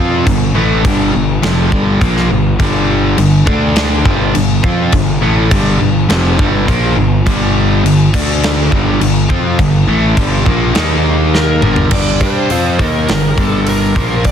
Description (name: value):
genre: hard rock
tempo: 103 BPM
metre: 4/4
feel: straight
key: G minor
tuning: A4 = 441 Hz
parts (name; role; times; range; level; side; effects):
- overdriven electric guitar; riff; 0.0-14.3 s; F2 to G4; -13 LUFS; equal; none
- fuzz picked electric bass; bass; 0.0-14.3 s; F1 to G2; -15 LUFS; equal; overdrive
- big rock drum kit; drums; 0.3-14.3 s; crash cymbal, hi-hat, kick drum, snare drum, toms; -16 LUFS; equal; none
- bluesy overdriven lead guitar; melody; 11.3-14.3 s; Bb4 to D5; -19 LUFS; right 1 dB; distortion, slapback echo
room: light reverb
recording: dense, heavily limited modern master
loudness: -10 LUFS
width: side -8 dB against mid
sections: 0.0-11.9 A section; 11.9-14.3 B section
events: drum fill 11.3-11.9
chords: 0.0 Gm; 3.5 D5; 4.1 Gm; 8.1 D5; 8.7 Gm; 10.8 Eb5; 11.6 Gm